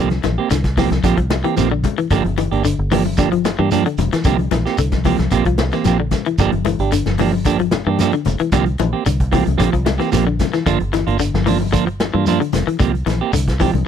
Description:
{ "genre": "afrobeat", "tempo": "112 BPM", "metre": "4/4", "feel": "straight", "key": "G dorian", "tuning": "A4 = 439 Hz", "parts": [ { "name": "electric guitar at the edge of break-up", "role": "arpeggios", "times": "0.0-13.8 s", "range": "D3 to F3", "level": "-22 LUFS", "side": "left 8 dB", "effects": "lush chorus" }, { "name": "clean electric guitar", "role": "stabs", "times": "0.0-13.8 s", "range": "F3 to G4", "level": "-19 LUFS", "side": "right 10 dB", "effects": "none" }, { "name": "fingered electric bass", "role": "bass", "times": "0.0-13.9 s", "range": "F1 to G2", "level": "-20 LUFS", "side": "equal", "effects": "none" }, { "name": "vintage drum kit", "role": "drums", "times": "0.1-13.9 s", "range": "hi-hat, kick drum, snare drum", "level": "-23 LUFS", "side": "equal", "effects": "none" }, { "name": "congas", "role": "percussion", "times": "0.1-13.9 s", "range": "none", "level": "-23 LUFS", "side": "left 14 dB", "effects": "none" }, { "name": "shekere", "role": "percussion", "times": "0.2-13.7 s", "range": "none", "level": "-25 LUFS", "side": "right 2 dB", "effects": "none" } ], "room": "little or no reverb", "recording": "none", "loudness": "-15 LUFS", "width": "side -8 dB against mid", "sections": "0.0-13.9 A section", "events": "none", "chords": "0.0 C7sus4; 2.1 Gm7; 4.2 C7sus4; 6.4 Gm7; 8.5 C7sus4; 10.7 Gm7; 12.8 C7sus4", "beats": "0.50 1.04 1.57 | 2.11 2.64 3.18 3.71 | 4.25 4.79 5.32 5.86 | 6.39 6.92 7.46 8.00 | 8.53 9.06 9.60 10.13 | 10.67 11.20 11.74 12.27 | 12.80 13.34 13.87" }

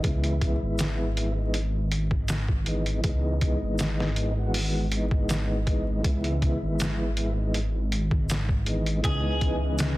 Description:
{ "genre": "trip hop", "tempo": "80 BPM", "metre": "4/4", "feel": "straight", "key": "C# minor", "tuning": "A4 = 441 Hz", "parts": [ { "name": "mellow tonewheel organ", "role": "accompaniment", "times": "0.0-10.0 s", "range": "E3 to F#4", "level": "-30 LUFS", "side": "equal", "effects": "overdrive, fast rotary speaker, tremolo, tape echo" }, { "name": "dark detuned saw bass", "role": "bass", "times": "0.0-10.0 s", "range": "G#1 to C#2", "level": "-27 LUFS", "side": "equal", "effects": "none" }, { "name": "trip hop sampler-style drum kit", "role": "drums", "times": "0.0-10.0 s", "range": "hi-hat, kick drum, snare drum", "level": "-28 LUFS", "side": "equal", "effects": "none" }, { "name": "egg shaker", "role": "percussion", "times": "0.8-9.9 s", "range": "none", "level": "-43 LUFS", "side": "equal", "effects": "none" }, { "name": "twelve-string electric guitar", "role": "melody", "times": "9.0-9.6 s", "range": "G#4", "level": "-31 LUFS", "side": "right 1 dB", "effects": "spring reverb" }, { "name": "warbly tape-like pad", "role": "sustained chords", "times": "9.3-10.0 s", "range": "E3 to B4", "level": "-36 LUFS", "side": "left 3 dB", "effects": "chorus, built-in reverb" }, { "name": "bowed-like drone", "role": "texture", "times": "9.6-10.0 s", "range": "E3", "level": "-43 LUFS", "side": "right 1 dB", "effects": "none" } ], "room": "light reverb, digital ambience", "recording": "dense, heavily limited modern master, vinyl crackle", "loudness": "-24 LUFS", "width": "side -18 dB against mid", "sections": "0.0-10.0 A section", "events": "none", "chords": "0.0 C#m7", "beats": "| 0.04 0.79 1.54 2.29 | 3.04 3.79 4.54 5.29 | 6.04 6.79 7.54 8.29 | 9.04 9.79" }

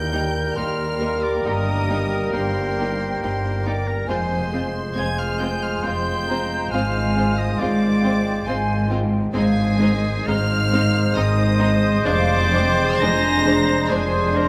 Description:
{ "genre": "classical, slow romantic movement for symphony orchestra", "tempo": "68 BPM", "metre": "3/4", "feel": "rubato", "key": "unclear", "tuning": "A4 = 440 Hz", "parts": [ { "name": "clear studio violin section", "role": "melody", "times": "0.0-14.5 s", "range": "Ab5 to Bb6", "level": "-34 LUFS", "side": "equal", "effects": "none" }, { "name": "bright clarinet", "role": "second line", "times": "0.0-14.5 s", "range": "Bb4 to C5", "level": "-33 LUFS", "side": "equal", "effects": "none" }, { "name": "bright oboe", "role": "second line", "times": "0.0-14.5 s", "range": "Ab4 to Bb5", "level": "-31 LUFS", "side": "equal", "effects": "none" }, { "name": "mellow hollow small flute group", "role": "second line", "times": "0.0-14.5 s", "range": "C5 to C6", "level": "-32 LUFS", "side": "equal", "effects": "none" }, { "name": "mellow bassoon", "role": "accompaniment", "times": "0.0-14.5 s", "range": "G3 to Ab3", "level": "-34 LUFS", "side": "equal", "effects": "none" }, { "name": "mellow French horn section", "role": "sustained chords", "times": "0.0-14.5 s", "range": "Ab3 to G4", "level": "-32 LUFS", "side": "equal", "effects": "none" }, { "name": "concert harp", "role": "arpeggios", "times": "0.0-14.5 s", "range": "F2 to Bb5", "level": "-33 LUFS", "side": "equal", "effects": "none" }, { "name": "clear trumpet", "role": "stabs", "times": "0.0-14.5 s", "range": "Bb4 to C5", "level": "-32 LUFS", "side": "equal", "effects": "none" }, { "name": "warm studio cello section", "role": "bass", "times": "0.0-14.5 s", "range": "Eb2 to Ab2", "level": "-27 LUFS", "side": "equal", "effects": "none" }, { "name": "warm studio double bass section", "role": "bass", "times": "0.0-14.5 s", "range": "F1 to Eb2", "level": "-28 LUFS", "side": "equal", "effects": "none" }, { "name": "warm studio violin section", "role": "second line", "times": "0.1-14.4 s", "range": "D4 to C5", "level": "-34 LUFS", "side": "equal", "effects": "none" }, { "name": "rich studio viola section", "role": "accompaniment", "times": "0.1-14.4 s", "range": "G3 to D4", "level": "-33 LUFS", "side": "equal", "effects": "none" } ], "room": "moderate scoring stage reverb, RT60 1.8 s", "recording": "none", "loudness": "-21 LUFS", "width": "mono", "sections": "0.0-14.5 A section", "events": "none", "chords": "0.0 Eb; 1.5 Eb/G; 4.1 Fm; 6.7 Fm/Ab; 9.3 Ab; 12.1 Dm7b5/F", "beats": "0.57 | 1.45 2.34 3.22 | 4.09 4.97 5.84 | 6.72 7.60 8.48 | 9.35 10.28 11.16 | 12.06 13.01 13.91" }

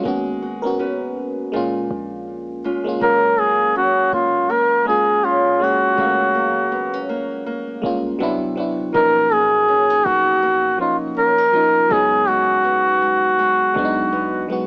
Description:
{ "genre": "R&B", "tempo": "81 BPM", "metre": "4/4", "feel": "swing 58% on 16ths", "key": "unclear", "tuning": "A4 = 444 Hz", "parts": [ { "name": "FM electric piano", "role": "accompaniment", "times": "0.0-14.7 s", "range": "E#3 to F5", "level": "-27 LUFS", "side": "equal", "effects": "chorus, cassette tape" }, { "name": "nylon-string guitar", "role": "arpeggios", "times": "0.0-14.7 s", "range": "Bb2 to Cb5", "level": "-29 LUFS", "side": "equal", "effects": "cassette tape, plate reverb" }, { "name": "warm 808-style bass", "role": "bass", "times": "0.1-14.5 s", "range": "Gb1 to Gb2", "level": "-39 LUFS", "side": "equal", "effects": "none" }, { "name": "warm duduk", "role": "melody", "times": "3.0-14.5 s", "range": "F4 to Bb4", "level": "-18 LUFS", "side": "equal", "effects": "cassette tape" } ], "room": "moderate booth ambience, RT60 0.2 s", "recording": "home recording on cassette, small speaker sound", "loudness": "-18 LUFS", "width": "mono", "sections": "0.0-3.0 A section; 3.0-14.7 B section", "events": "none", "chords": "0.1 Abm11; 1.5 Bbm7; 3.0 Gbmaj7; 8.2 Cmaj9#11; 8.9 Bmaj9#11; 11.9 Db7sus4", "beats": "| 0.05 0.79 1.53 2.27 | 3.02 3.76 4.50 5.24 | 5.98 6.72 7.46 8.20 | 8.94 9.68 10.42 11.16 | 11.90 12.64 13.38 14.13" }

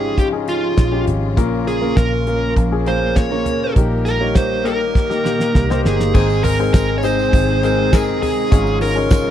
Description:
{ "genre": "piano-driven pop", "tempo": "101 BPM", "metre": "4/4", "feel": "straight", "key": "Ab major", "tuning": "A4 = 440 Hz", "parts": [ { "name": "dark smooth lead guitar", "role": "melody", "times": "0.0-9.3 s", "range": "F4 to Db5", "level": "-20 LUFS", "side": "right 3 dB", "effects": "overdrive" }, { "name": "warm concert grand piano", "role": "accompaniment", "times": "0.0-9.3 s", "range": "Ab2 to Eb5", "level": "-21 LUFS", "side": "left 7 dB", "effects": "none" }, { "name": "warm symphonic string section", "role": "sustained chords", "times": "0.0-9.3 s", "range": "C3 to Bb4", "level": "-28 LUFS", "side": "right 1 dB", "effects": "none" }, { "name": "vintage muted picked electric bass", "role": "bass", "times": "0.0-9.3 s", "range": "G1 to C2", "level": "-21 LUFS", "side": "equal", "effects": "none" }, { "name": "damped 70s drum kit", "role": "drums", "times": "0.2-9.3 s", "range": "crash cymbal, hi-hat, kick drum, snare drum, toms", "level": "-16 LUFS", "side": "equal", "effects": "none" }, { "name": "picked steel-string acoustic guitar", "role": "riff", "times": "1.4-6.1 s", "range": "Bb2 to Bb4", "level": "-24 LUFS", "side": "right 5 dB", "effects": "none" }, { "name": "tambourine", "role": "percussion", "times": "6.1-9.2 s", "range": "none", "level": "-39 LUFS", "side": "right 8 dB", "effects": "none" } ], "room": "studio reverb", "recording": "dry, close 1970s-style studio recording", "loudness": "-14 LUFS", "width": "side -10 dB against mid", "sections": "0.0-6.1 A section; 6.1-9.3 B section", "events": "drum fill 5.0-6.1", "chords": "0.0 Dbadd9/Ab; 1.4 Bbm; 3.8 Eb/Bb; 6.1 Ab; 8.5 Dbadd9/Ab", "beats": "0.18 0.78 | 1.38 1.97 2.57 3.17 | 3.76 4.36 4.96 5.55 | 6.14 6.74 7.33 7.93 | 8.52 9.11" }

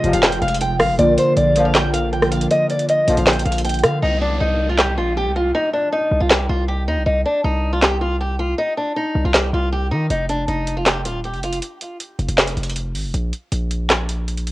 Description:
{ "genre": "hip hop, trap", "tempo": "158 BPM", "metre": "4/4", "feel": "half-time", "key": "C minor", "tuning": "A4 = 440 Hz", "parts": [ { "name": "picked old ladder-braced acoustic guitar", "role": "melody", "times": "0.0-11.6 s", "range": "D4 to G5", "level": "-20 LUFS", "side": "equal", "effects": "none" }, { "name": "warbly lo-fi synth keys", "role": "accompaniment", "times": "0.0-4.0 s", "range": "C3 to Bb4", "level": "-23 LUFS", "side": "right 1 dB", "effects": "chorus, cassette tape" }, { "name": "airy breathy pad", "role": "sustained chords", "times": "0.0-4.0 s", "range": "C3 to F4", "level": "-28 LUFS", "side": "equal", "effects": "chorus, cassette tape" }, { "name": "mellow brass ensemble", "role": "stabs", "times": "0.0-3.3 s", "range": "Ab2 to F3", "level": "-24 LUFS", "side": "left 2 dB", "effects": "cassette tape, analog delay" }, { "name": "distorted 808-style bass", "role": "bass", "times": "0.0-14.5 s", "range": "Eb1 to Eb3", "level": "-21 LUFS", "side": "equal", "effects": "distortion" }, { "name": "trap drum kit", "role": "drums", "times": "0.0-14.5 s", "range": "handclaps, hi-hat, rim click, snare drum", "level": "-18 LUFS", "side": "equal", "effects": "cassette tape" }, { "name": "downlifter", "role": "sound effects", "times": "4.0-7.1 s", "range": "none", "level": "-32 LUFS", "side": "equal", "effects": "none" } ], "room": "light reverb, digital ambience", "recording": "home recording on cassette", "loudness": "-16 LUFS", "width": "side -17 dB against mid", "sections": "0.0-4.0 A section; 4.0-14.5 B section", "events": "break 4.0-10.1", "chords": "0.0 Fm; 1.0 Bb; 4.0 Cm; 10.1 N.C.", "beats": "0.23 0.61 | 0.99 1.37 1.75 2.13 | 2.51 2.89 3.27 3.65 | 4.03 4.41 4.79 5.17 | 5.54 5.92 6.30 6.68 | 7.06 7.44 7.82 8.20 | 8.58 8.96 9.34 9.72 | 10.10 10.48 10.86 11.24 | 11.62 12.00 12.38 12.76 | 13.14 13.52 13.90 14.28" }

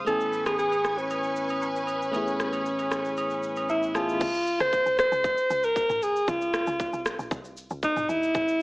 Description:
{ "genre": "amapiano", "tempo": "116 BPM", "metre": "4/4", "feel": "straight", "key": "unclear", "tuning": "A4 = 435 Hz", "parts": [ { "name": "FM electric piano with auto-pan", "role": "accompaniment", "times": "0.0-4.2 s", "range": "A3 to A5", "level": "-33 LUFS", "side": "left 1 dB", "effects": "none" }, { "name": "string machine, violins", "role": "sustained chords", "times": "0.0-4.2 s", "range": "B4 to C#6", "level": "-35 LUFS", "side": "equal", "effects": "ensemble chorus" }, { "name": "fingered electric bass", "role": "bass", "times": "0.0-4.2 s", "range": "A1", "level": "-42 LUFS", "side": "equal", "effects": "none" }, { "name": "breathy alto saxophone", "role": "melody", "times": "0.1-8.6 s", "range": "C#4 to C5", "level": "-25 LUFS", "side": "equal", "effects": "tape echo" }, { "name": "organic electronic drum kit", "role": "drums", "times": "0.1-8.6 s", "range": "crash cymbal, kick drum, rim click, shaker, toms", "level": "-33 LUFS", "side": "equal", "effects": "overdrive" }, { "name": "agogo bells and woodblock", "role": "percussion", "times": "0.1-4.1 s", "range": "none", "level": "-35 LUFS", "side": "right 2 dB", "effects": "none" }, { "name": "woody log drum bass", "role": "bass", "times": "4.2-8.6 s", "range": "A1 to Eb2", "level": "-38 LUFS", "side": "equal", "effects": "none" } ], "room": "moderate digital room reverb, RT60 1.0 s", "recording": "AM radio sound", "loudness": "-24 LUFS", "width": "side -24 dB against mid", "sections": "0.0-4.2 A section; 4.2-8.6 B section", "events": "FM electric piano fill 3.4-4.2; drop 4.2-8.6", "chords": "0.1 Amaj9; 4.2 Dbmaj7", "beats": "| 0.07 0.59 1.11 1.62 | 2.14 2.66 3.17 3.69 | 4.21 4.73 5.24 5.76 | 6.28 6.80 7.31 7.83 | 8.35" }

